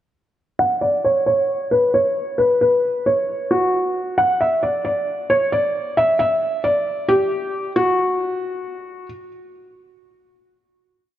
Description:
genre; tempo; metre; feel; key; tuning
hip hop, trap; 134 BPM; 4/4; half-time; unclear; A4 = 436 Hz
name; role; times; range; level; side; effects
felt-muted upright piano; solo; 0.6-9.1 s; F#4 to F#5; -17 LUFS; equal; low-pass filter
room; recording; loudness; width
moderate lush hall reverb, RT60 2.9 s; none; -17 LUFS; side -12 dB against mid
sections
0.6-7.8 breakdown; 7.8-11.2 final note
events
filter sweep on felt piano 0.6-7.8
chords
none

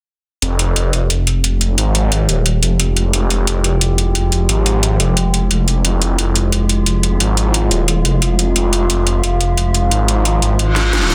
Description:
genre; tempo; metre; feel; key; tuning
dark technical drum and bass; 177 BPM; 4/4; straight; F minor; A4 = 441 Hz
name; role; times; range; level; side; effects
metallic inharmonic drone; sustained chords; 1.2-11.1 s; F3 to G4; -23 LUFS; equal; chorus, built-in reverb, phaser
phased detuned saw bass; bass; 0.4-11.1 s; Eb1 to Ab1; -17 LUFS; equal; phaser
drum and bass drum kit; drums; 0.4-11.1 s; hi-hat, snare drum; -21 LUFS; equal; none
reverse cymbal; sound effects; 10.7-11.1 s; none; -21 LUFS; equal; none
room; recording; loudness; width
light reverb; dense, heavily limited modern master; -15 LUFS; mono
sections
0.4-11.1 A section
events
filter sweep on synth drone 0.4-11.1; reverse cymbal 10.7-11.1; drum fill 10.8-11.1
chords
0.4 Fmadd9

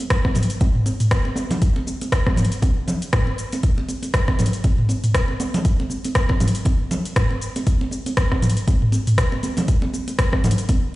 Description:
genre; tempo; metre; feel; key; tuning
house; 119 BPM; 4/4; swing 57% on 16ths; none; none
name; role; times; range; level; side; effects
afro-pop drum kit; drums; 0.0-10.8 s; hi-hat, rim click, shaker, toms; -22 LUFS; equal; none
congas; percussion; 0.0-10.8 s; none; -25 LUFS; right 1 dB; none
electronic kick drum; drums; 0.1-10.8 s; none; -19 LUFS; equal; none
room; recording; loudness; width
light reverb, digital ambience; played on a big sound system in a bare room, stone room reverb, nothing above 10.4 kHz; -18 LUFS; side -18 dB against mid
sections
0.0-11.0 A section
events
none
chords
none

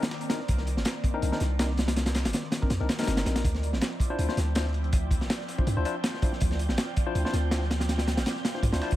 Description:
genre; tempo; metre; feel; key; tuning
drum and bass, jungle; 162 BPM; 4/4; swing 53% on 16ths; D phrygian; A4 = 441 Hz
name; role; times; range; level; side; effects
airy breathy pad; sustained chords; 0.0-9.0 s; Eb3 to D5; -37 LUFS; right 2 dB; chorus, phaser
tine electric piano; stabs; 0.0-8.9 s; C4 to C5; -34 LUFS; left 4 dB; medium stereo tremolo, dub echo
crunchy breakbeat drum kit; drums; 0.0-9.0 s; hi-hat, kick drum, snare drum; -28 LUFS; equal; none
dusty soul sampler-style drum kit; drums; 0.1-8.9 s; hi-hat, snare drum; -42 LUFS; equal; high-pass filter on hats, high-pass filter on snare, high-pass filter on room
long sustained 808-style bass; bass; 0.5-8.8 s; G1 to G2; -28 LUFS; equal; none
wind-like tuned noise texture; texture; 3.8-9.0 s; G5; -42 LUFS; right 2 dB; built-in reverb
room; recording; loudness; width
studio ambience; none; -25 LUFS; side -14 dB against mid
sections
0.0-3.4 A section; 3.4-9.0 A section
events
drop 0.0-3.4, 3.4-9.0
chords
0.0 Cm9; 3.4 Dm9

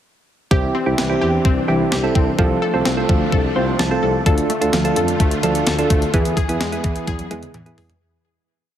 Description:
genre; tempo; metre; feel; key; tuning
synth-pop; 128 BPM; 4/4; straight; unclear; A4 = 439 Hz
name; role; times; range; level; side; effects
soft electric-piano-like synth keys; accompaniment; 0.5-7.9 s; B3 to A5; -21 LUFS; right 3 dB; chorus
string machine, violas; sustained chords; 0.5-8.0 s; D3 to G#4; -25 LUFS; left 1 dB; ensemble chorus
analog pluck; arpeggios; 0.5-8.0 s; E3 to A4; -24 LUFS; left 2 dB; chorus, digital delay
warm tuba; bass; 0.5-7.9 s; C2 to F2; -23 LUFS; equal; none
clean 12-bit digital drum machine; drums; 0.5-8.0 s; hi-hat, kick drum, snare drum, toms; -20 LUFS; equal; overdrive
room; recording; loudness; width
moderate plate reverb, RT60 2.1 s; heavily compressed radio sound, multiband compression; -16 LUFS; side -10 dB against mid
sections
0.5-8.0 pre-chorus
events
synth keys fill 3.3-4.3; fade-out 6.1-8.0; drum fill 7.1-8.0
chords
0.5 Cadd9; 2.4 F6/C; 4.3 Dm; 6.1 E

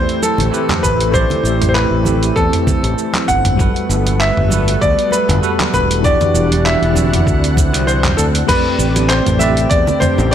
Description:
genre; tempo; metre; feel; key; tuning
sunset chillout; 98 BPM; 4/4; swing 55% on 16ths; A dorian; A4 = 440 Hz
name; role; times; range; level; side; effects
bright concert grand piano; melody; 0.0-10.3 s; A4 to F#5; -18 LUFS; equal; digital delay
bell-like tine electric piano; accompaniment; 0.0-10.3 s; D3 to E5; -20 LUFS; equal; medium stereo tremolo, auto-pan, digital delay
lush unison pad; sustained chords; 0.0-10.3 s; C3 to F#5; -22 LUFS; equal; chorus
fingered electric bass; bass; 0.0-10.3 s; E1 to E2; -17 LUFS; equal; none
dusty soul sampler-style drum kit; drums; 0.1-10.3 s; cabasa, crash cymbal, handclaps, hi-hat, toms; -20 LUFS; right 1 dB; none
congas and bongos; percussion; 0.2-10.3 s; none; -24 LUFS; right 3 dB; none
electronic kick drum; drums; 0.8-9.8 s; none; -18 LUFS; equal; none
room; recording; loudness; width
light reverb; none; -12 LUFS; side -9 dB against mid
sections
0.0-8.5 A section; 8.5-10.3 B section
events
kick drops out 7.9-8.5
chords
0.0 Am7; 3.6 Gmaj9; 6.0 Em9; 7.3 D9; 8.5 Am11

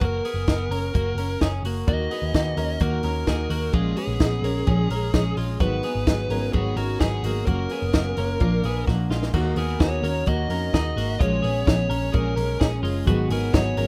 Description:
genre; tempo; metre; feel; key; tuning
jangly indie pop; 129 BPM; 4/4; straight; Eb minor; A4 = 440 Hz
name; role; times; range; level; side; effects
fuzz lead guitar; melody; 0.0-13.9 s; Gb4 to Eb5; -32 LUFS; equal; distortion, slapback echo
twelve-string electric guitar; arpeggios; 0.0-13.9 s; Ab3 to Bb4; -33 LUFS; equal; spring reverb
vintage muted picked electric bass; bass; 0.0-13.9 s; Gb1 to F2; -28 LUFS; equal; none
compact cocktail drum kit; drums; 0.0-13.9 s; crash cymbal, hi-hat, kick drum, snare drum; -24 LUFS; equal; none
picked steel-string acoustic guitar; accompaniment; 1.9-13.9 s; Ab2 to Ab4; -30 LUFS; equal; none
room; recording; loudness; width
moderate studio reverb, RT60 0.6 s; rough home demo mix; -23 LUFS; mono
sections
0.0-9.3 A section; 9.3-13.9 B section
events
drum fill 8.9-9.3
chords
0.0 Gb; 1.9 Ebm; 3.7 Bbm7; 5.6 Abm7; 7.5 Gbmaj7; 8.4 Bb; 9.3 Ebm; 11.2 Bbm7; 13.1 Abm7

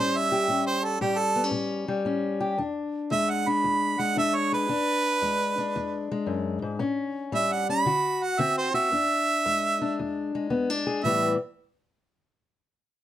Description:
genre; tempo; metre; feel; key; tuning
acoustic country blues, solo or duo; 114 BPM; 4/4; swing 67% on 8ths; unclear; A4 = 440 Hz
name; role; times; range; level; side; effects
clear harmonica; melody; 0.0-11.4 s; G4 to B5; -24 LUFS; right 3 dB; none
fingerpicked steel-string acoustic guitar; accompaniment; 0.0-11.4 s; E2 to G#4; -27 LUFS; left 3 dB; none
room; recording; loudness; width
light reverb; close, detailed microphones; -24 LUFS; side -12 dB against mid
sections
0.0-11.0 A section; 11.0-13.0 B section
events
none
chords
0.0 A7; 2.6 E7; 6.8 A7; 7.9 D7; 8.9 E7; 11.0 Asus2

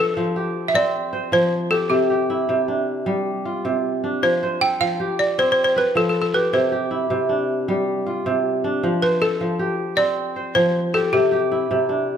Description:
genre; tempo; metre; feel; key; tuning
west african traditional, West African string and xylophone music; 104 BPM (dotted quarters); 12/8; straight; F lydian; A4 = 438 Hz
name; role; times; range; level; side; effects
balafon; melody; 0.0-12.2 s; G4 to G5; -19 LUFS; equal; none
kora; arpeggios; 0.0-12.2 s; C3 to C5; -21 LUFS; right 1 dB; none
room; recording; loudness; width
moderate recital hall reverb, RT60 1.9 s; none; -18 LUFS; side -8 dB against mid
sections
0.0-12.2 A section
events
none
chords
0.0 F; 1.9 C; 4.2 F; 6.5 C; 8.8 F; 11.1 C

